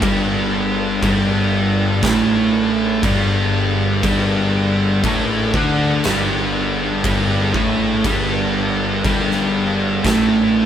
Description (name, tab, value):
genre	stoner and doom metal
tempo	60 BPM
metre	4/4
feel	straight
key	unclear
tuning	A4 = 440 Hz
part	tonewheel organ	sustained chords	0.0-10.7 s	G3 to A4	-29 LUFS	left 1 dB	none
part	sludgy distorted guitar	riff	0.0-10.7 s	G2 to D4	-21 LUFS	right 1 dB	overdrive
part	thick fuzz guitar	riff	0.0-10.7 s	G2 to D4	-22 LUFS	left 6 dB	distortion
part	thick fuzz guitar	riff	0.0-10.7 s	G2 to D4	-22 LUFS	right 6 dB	distortion
part	fuzz picked electric bass	bass	0.0-10.7 s	G1 to D2	-24 LUFS	equal	overdrive
part	oversized low-tuned drum kit	drums	0.0-10.3 s	crash cymbal, kick drum, snare drum	-22 LUFS	left 1 dB	none
room	light reverb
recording	band playing live in one room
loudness	-15 LUFS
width	side -9 dB against mid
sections	0.0-10.7 A section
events	none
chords	0.0 G5